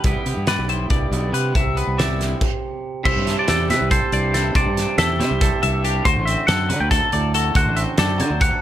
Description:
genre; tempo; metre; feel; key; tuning
math rock and midwest emo; 280 BPM (eighths); 7/8; straight; C lydian; A4 = 441 Hz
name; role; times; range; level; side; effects
twangy electric guitar; accompaniment; 0.0-8.6 s; G2 to D5; -26 LUFS; right 7 dB; none
twelve-string electric guitar; arpeggios; 0.0-8.6 s; G4 to E5; -25 LUFS; left 8 dB; phaser
fuzz fingered electric bass; bass; 0.0-8.5 s; A1 to D3; -22 LUFS; equal; overdrive
loose indie drum kit; drums; 0.0-8.5 s; crash cymbal, hi-hat, kick drum, snare drum; -22 LUFS; equal; none
twangy electric guitar; melody; 3.1-8.6 s; C5 to A5; -22 LUFS; equal; none
room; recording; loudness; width
light reverb; none; -17 LUFS; side -12 dB against mid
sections
0.0-3.1 A section; 3.1-8.6 B section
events
stop 2.4-3.1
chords
0.0 Em7; 1.5 Cmaj7; 3.1 C69; 6.1 D7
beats
| 0.04 0.26 0.47 0.69 0.90 1.12 1.33 | 1.55 1.76 1.98 2.19 2.41 2.62 2.84 | 3.05 3.27 3.48 3.70 3.91 4.13 4.34 | 4.55 4.77 4.98 5.20 5.41 5.63 5.84 | 6.06 6.27 6.49 6.70 6.91 7.13 7.34 | 7.56 7.77 7.99 8.20 8.41

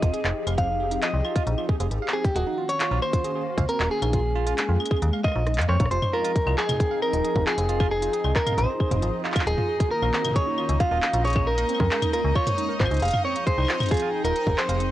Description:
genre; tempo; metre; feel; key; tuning
IDM; 135 BPM; 4/4; straight; F minor; A4 = 442 Hz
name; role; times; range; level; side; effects
clean electric guitar; melody; 0.0-14.9 s; Gb4 to F5; -26 LUFS; equal; cassette tape, tape echo
hollow soft pad; sustained chords; 0.0-14.9 s; Eb3 to G5; -33 LUFS; left 2 dB; ensemble chorus, vintage 12-bit sampler grit
barky tine electric piano; arpeggios; 0.0-14.9 s; C4 to F5; -33 LUFS; right 10 dB; medium stereo tremolo, analog delay
metallic FM bass; bass; 0.0-14.9 s; Eb1 to F2; -25 LUFS; equal; none
electronic kick drum; drums; 0.0-14.6 s; none; -23 LUFS; equal; cassette tape
organic electronic drum kit; drums; 0.0-14.9 s; claves, handclaps, hi-hat, rim click, toms; -29 LUFS; equal; cassette tape
bubbling stepped-filter texture; texture; 5.9-14.9 s; Eb4 to Eb5; -36 LUFS; equal; chorus, built-in reverb, sidechain pumping
room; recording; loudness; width
light reverb; home recording on cassette; -21 LUFS; side -14 dB against mid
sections
0.0-5.9 A section; 5.9-14.9 B section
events
drum fill 5.2-5.9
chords
0.0 Fm9; 2.4 Ebm9; 4.1 Bbm7; 5.9 Fm9; 9.5 Ebm9; 11.2 Bbm7; 13.0 Fm9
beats
0.14 | 0.58 1.02 1.47 1.91 | 2.36 2.80 3.25 3.69 | 4.13 4.58 5.02 5.47 | 5.91 6.36 6.80 7.25 | 7.69 8.13 8.58 9.02 | 9.47 9.91 10.36 10.80 | 11.25 11.69 12.13 12.58 | 13.02 13.47 13.91 14.36 | 14.80

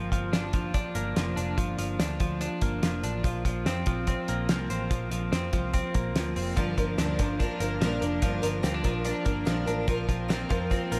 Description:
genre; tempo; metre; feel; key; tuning
jangly indie pop; 144 BPM; 4/4; straight; G minor; A4 = 440 Hz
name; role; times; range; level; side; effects
twelve-string electric guitar; arpeggios; 0.0-11.0 s; F3 to D4; -33 LUFS; equal; delay
vintage muted picked electric bass; bass; 0.0-11.0 s; F1 to F2; -36 LUFS; equal; none
cloth-damped thuddy drum kit; drums; 0.1-11.0 s; hi-hat, kick drum, snare drum; -32 LUFS; equal; none
picked steel-string acoustic guitar; accompaniment; 6.6-11.0 s; G2 to Bb4; -33 LUFS; equal; analog chorus
room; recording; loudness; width
moderate huge ambient reverb, RT60 8.3 s; dreamy mix soaked in reverb; -28 LUFS; mono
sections
0.0-11.0 A section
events
none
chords
0.0 Gm7; 3.2 Bbsus2; 6.6 Gm7; 9.9 Bbsus2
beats
0.33 0.74 1.16 | 1.58 1.99 2.41 2.83 | 3.24 3.66 4.08 4.49 | 4.91 5.33 5.74 6.16 | 6.57 6.99 7.40 7.81 | 8.23 8.64 9.05 9.47 | 9.88 10.30 10.71

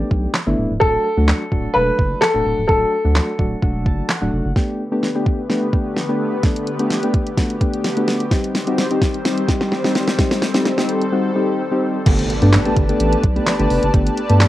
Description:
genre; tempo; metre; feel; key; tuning
dance-pop; 128 BPM; 4/4; straight; G major; A4 = 439 Hz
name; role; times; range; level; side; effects
warm baby grand piano; melody; 0.0-4.3 s; A4 to B4; -18 LUFS; left 1 dB; cassette tape, tape echo
soft electric-piano-like synth keys; accompaniment; 0.0-14.5 s; F#3 to A5; -21 LUFS; left 1 dB; chorus, sidechain pumping, cassette tape
saturated sub bass; bass; 0.0-4.5, 12.1-14.5 s; C#1 to G2; -18 LUFS; equal; sidechain pumping
smooth R&B drum kit; drums; 0.1-14.5 s; crash cymbal, handclaps, hi-hat, kick drum, snare drum; -19 LUFS; equal; cassette tape
airy breathy pad; sustained chords; 4.8-14.5 s; D3 to A5; -24 LUFS; equal; chorus, sidechain pumping, cassette tape
impact; sound effects; 12.1-13.9 s; none; -27 LUFS; equal; none
room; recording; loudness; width
light reverb; home recording on cassette; -16 LUFS; side -15 dB against mid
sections
0.0-4.6 A section; 4.6-12.1 B section; 12.1-14.5 C section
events
synth keys fill 3.6-4.6; build-up 4.6-12.1; drum fill 4.6-11.1; drop 12.1-14.5; impact 12.1-13.9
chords
0.0 Gadd9; 0.8 D; 4.6 Gadd9; 8.3 Cm; 12.1 Gadd9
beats
0.34 | 0.81 1.28 1.75 2.22 | 2.69 3.16 3.62 4.09 | 4.56 5.03 5.50 5.97 | 6.44 6.91 7.38 7.84 | 8.31 8.78 9.25 9.72 | 10.19 10.66 11.12 11.59 | 12.06 12.53 13.00 13.47 | 13.94 14.41

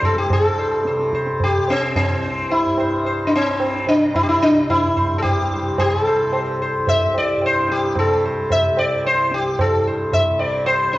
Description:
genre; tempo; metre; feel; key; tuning
indian classical, Hindustani; 110 BPM; 5/4; straight; C raga bhupali; A4 = 440 Hz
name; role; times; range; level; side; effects
sitar; melody; 0.0-11.0 s; C4 to E5; -17 LUFS; left 1 dB; none
tanpura; drone; 0.0-11.0 s; C2 to C3; -26 LUFS; equal; none
tabla; percussion; 0.0-11.0 s; none; -23 LUFS; right 2 dB; none
room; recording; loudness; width
wet recital hall reverb, RT60 1.5 s; worn, warbling old tape, cassette tape, warbly pitch drift, nothing above 7.6 kHz; -16 LUFS; side -17 dB against mid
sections
0.3-11.0 A section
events
none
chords
none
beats
| 0.30 0.85 1.41 1.96 2.50 | 3.05 3.60 4.15 4.70 5.24 | 5.79 6.33 6.88 7.42 7.97 | 8.51 9.05 9.59 10.13 10.67

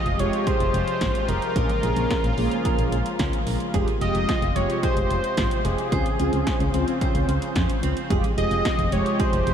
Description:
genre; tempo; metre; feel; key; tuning
synth-pop; 110 BPM; 4/4; straight; unclear; A4 = 440 Hz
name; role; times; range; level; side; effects
octave-doubled lead; melody; 0.0-9.5 s; Ab4 to Eb5; -27 LUFS; left 1 dB; chorus, analog delay
sweeping resonant pad; sustained chords; 0.0-9.5 s; C3 to C5; -29 LUFS; left 1 dB; chorus
nylon-string guitar; arpeggios; 0.0-9.4 s; Ab3 to C5; -32 LUFS; right 8 dB; lush chorus, analog delay
solid FM bass; bass; 0.1-9.5 s; F1 to F2; -26 LUFS; equal; none
punchy analog drum machine; drums; 0.1-9.5 s; hi-hat, kick drum, snare drum; -26 LUFS; equal; none
mellow synth brass; accompaniment; 0.2-9.5 s; Ab3 to Ab4; -29 LUFS; right 1 dB; chorus
room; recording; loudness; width
moderate huge ambient reverb, RT60 7.7 s; dreamy mix soaked in reverb; -20 LUFS; side -8 dB against mid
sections
0.0-9.5 A section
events
none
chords
0.0 Fmadd9; 1.6 Bbm7; 3.7 Fmadd9; 5.9 Dbmaj7; 8.1 Fmadd9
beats
0.47 1.01 | 1.56 2.10 2.65 3.19 | 3.74 4.29 4.83 5.38 | 5.92 6.47 7.01 7.56 | 8.10 8.65 9.19

